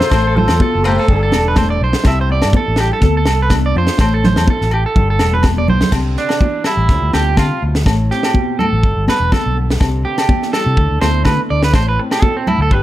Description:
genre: highlife guitar band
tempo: 124 BPM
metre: 4/4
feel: swing 54% on 16ths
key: C major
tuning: A4 = 440 Hz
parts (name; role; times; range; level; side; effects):
- warm horn section; melody; 0.0-1.8 s; D4 to C5; -18 LUFS; left 1 dB; slapback echo
- sitar; second line; 0.0-1.8 s; D3 to A3; -28 LUFS; left 3 dB; none
- flamenco guitar; accompaniment; 0.0-12.8 s; G2 to A4; -23 LUFS; left 4 dB; none
- electric guitar at the edge of break-up; arpeggios; 0.0-12.8 s; C4 to E5; -19 LUFS; right 4 dB; slapback echo
- tight funk drum kit; drums; 0.0-12.8 s; crash cymbal, kick drum, snare drum; -16 LUFS; equal; none
- fingered electric bass; bass; 0.1-12.8 s; E1 to D3; -16 LUFS; equal; none
- agogo bells; percussion; 0.1-12.6 s; none; -25 LUFS; left 4 dB; none
- congas; percussion; 0.1-12.8 s; none; -20 LUFS; equal; none
room: small room ambience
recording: none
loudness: -12 LUFS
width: side -14 dB against mid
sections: 0.0-5.9 A section; 5.9-12.8 B section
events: drum fill 5.3-5.9; clean electric guitar solo 5.9-12.8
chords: 0.1 Am; 1.1 Gadd9; 2.1 Cadd9; 3.0 Dm; 4.0 Am; 5.0 Gadd9; 5.9 Cadd9; 6.9 Dmadd9; 7.9 Am; 8.8 G; 9.8 Cadd9; 10.8 Dsus2; 11.7 Am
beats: | 0.13 0.61 1.09 1.58 | 2.06 2.54 3.03 3.51 | 4.00 4.48 4.96 5.45 | 5.93 6.42 6.90 7.39 | 7.87 8.35 8.84 9.32 | 9.81 10.29 10.78 11.26 | 11.74 12.23 12.71

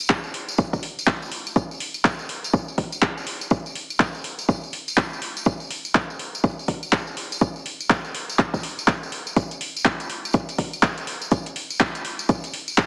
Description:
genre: house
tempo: 123 BPM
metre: 4/4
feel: swing 61% on 16ths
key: none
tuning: none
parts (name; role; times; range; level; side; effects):
- tambourine; percussion; 0.0-12.9 s; none; -32 LUFS; equal; none
- deep house drum kit; drums; 0.1-12.9 s; handclaps, hi-hat; -24 LUFS; equal; none
- electronic kick drum; drums; 0.1-12.9 s; none; -22 LUFS; equal; overdrive
room: light reverb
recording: heavily compressed radio sound, small speaker sound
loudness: -22 LUFS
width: side -31 dB against mid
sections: 0.0-12.9 A section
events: none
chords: none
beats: 0.10 0.58 1.07 | 1.56 2.05 2.54 3.02 | 3.51 4.00 4.49 4.97 | 5.46 5.95 6.44 6.92 | 7.41 7.90 8.39 8.88 | 9.36 9.85 10.34 10.83 | 11.32 11.80 12.29 12.78

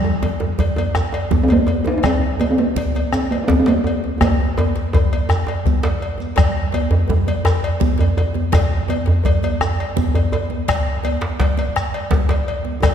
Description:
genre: west african traditional, West African drum ensemble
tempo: 111 BPM (dotted quarters)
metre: 12/8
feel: straight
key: unclear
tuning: A4 = 438 Hz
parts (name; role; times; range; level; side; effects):
- talking drum; melody; 0.0-4.9 s; G3 to Eb4; -19 LUFS; right 1 dB; none
- congas; percussion; 0.0-12.9 s; none; -26 LUFS; right 6 dB; none
- djembe; percussion; 0.0-12.9 s; none; -20 LUFS; right 1 dB; none
- cowbell; percussion; 0.2-12.9 s; none; -27 LUFS; left 4 dB; none
- djembe; percussion; 0.2-12.9 s; none; -24 LUFS; left 2 dB; none
- bombo; percussion; 0.6-12.9 s; none; -22 LUFS; left 2 dB; none
- shekere; percussion; 1.0-12.9 s; none; -30 LUFS; right 1 dB; none
room: wet concert hall reverb, RT60 2.3 s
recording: recorded in a church or concert hall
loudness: -16 LUFS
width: side -8 dB against mid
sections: 0.0-6.4 A section; 6.4-12.9 B section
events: drum fill 4.2-6.4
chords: none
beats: 0.41 0.95 1.50 | 2.04 2.58 3.13 3.67 | 4.21 4.75 5.29 5.84 | 6.38 6.92 7.46 8.00 | 8.54 9.07 9.61 10.15 | 10.69 11.22 11.76 12.29 | 12.83

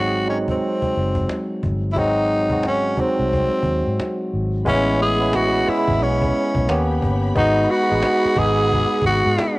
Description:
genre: R&B, neo-soul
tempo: 89 BPM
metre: 4/4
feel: swing 61% on 16ths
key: unclear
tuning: A4 = 440 Hz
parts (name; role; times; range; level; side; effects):
- growling tenor saxophone; melody; 0.0-9.6 s; B#3 to G#4; -20 LUFS; left 1 dB; cassette tape
- barky tine electric piano; accompaniment; 0.0-9.6 s; F#3 to G#4; -22 LUFS; right 1 dB; overdrive, auto-pan
- vintage muted fingered electric bass; bass; 0.0-9.4 s; F#1 to G#2; -23 LUFS; equal; none
- cajon; drums; 0.3-9.6 s; none; -28 LUFS; equal; cassette tape
- warm symphonic string section; sustained chords; 4.7-9.6 s; G4 to B5; -31 LUFS; equal; none
room: light reverb, studio reverb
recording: home recording on cassette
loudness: -17 LUFS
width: side -20 dB against mid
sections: 0.0-4.7 A section; 4.7-9.6 B section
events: none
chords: 0.0 G#7; 4.7 Amaj9; 6.7 D#7b13; 7.4 G#m7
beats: 0.61 1.29 | 1.96 2.64 3.31 3.98 | 4.66 5.33 6.01 6.68 | 7.36 8.03 8.70 9.38

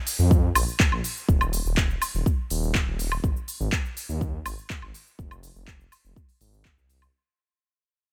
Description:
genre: progressive house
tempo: 123 BPM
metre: 4/4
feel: straight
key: unclear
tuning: A4 = 443 Hz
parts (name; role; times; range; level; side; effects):
- deep house drum kit; drums; 0.1-7.1 s; handclaps, hi-hat, shaker, woodblock; -30 LUFS; equal; sidechain pumping on perc, sidechain pumping on hats
- dark detuned saw bass; bass; 0.2-7.1 s; Eb1 to F2; -29 LUFS; equal; sidechain pumping
- electronic kick drum; drums; 0.3-6.8 s; none; -25 LUFS; equal; none
room: digital ambience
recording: none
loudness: -25 LUFS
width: mono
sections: 0.0-7.1 A section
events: drop 0.0-7.1; fade-out 0.0-7.1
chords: none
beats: 0.31 0.80 | 1.29 1.77 2.26 2.75 | 3.24 3.73 4.21 4.70 | 5.19 5.68 6.16 6.65

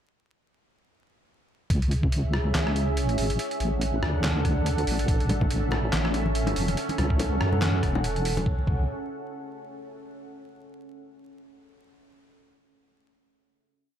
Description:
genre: deep dubstep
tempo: 142 BPM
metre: 4/4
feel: swing 57% on 16ths, half-time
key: C# phrygian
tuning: A4 = 440 Hz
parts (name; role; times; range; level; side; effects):
- deep dark ambient pad; sustained chords; 2.0-8.7 s; C#4 to F#5; -31 LUFS; right 2 dB; chorus, built-in reverb
- deep soft wobble bass; bass; 1.7-8.9 s; E1 to F#2; -26 LUFS; equal; chorus
- electronic kick drum; drums; 1.7-8.8 s; none; -26 LUFS; equal; none
- trip hop sampler-style drum kit; drums; 1.7-8.4 s; handclaps, hi-hat, rim click, snare drum; -31 LUFS; equal; none
- congas and bongos; percussion; 5.3-8.4 s; none; -32 LUFS; left 3 dB; dub echo
room: little or no reverb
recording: vinyl crackle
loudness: -23 LUFS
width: side -10 dB against mid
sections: 1.7-8.5 drop; 8.5-10.2 final chord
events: drop 1.7-8.5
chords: 1.7 C#m; 3.4 D; 5.1 A; 6.8 F#m; 8.5 C#m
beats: | 1.70 2.12 2.55 2.97 | 3.39 3.81 4.24 4.66 | 5.08 5.51 5.93 6.35 | 6.77 7.20 7.62 8.04 | 8.46

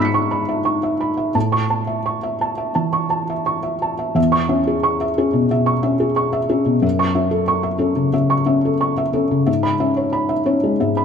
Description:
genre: neoclassical minimalist piano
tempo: 84-92 BPM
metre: 4/4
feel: rubato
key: unclear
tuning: A4 = 440 Hz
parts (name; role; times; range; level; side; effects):
- felt-muted upright piano; solo; 0.0-11.0 s; E2 to C#7; -16 LUFS; equal; none
room: moderate scoring stage reverb, RT60 1.9 s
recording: none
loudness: -16 LUFS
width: side -7 dB against mid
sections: 0.0-4.2 A section; 4.2-11.0 B section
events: none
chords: 0.0 E6/G#; 1.3 A; 4.2 E6; 6.8 F#m7; 9.5 E6/G#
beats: 0.66 | 1.35 2.05 2.76 3.47 | 4.17 4.84 5.51 6.17 | 6.83 7.49 8.15 8.82 | 9.48 10.13 10.80

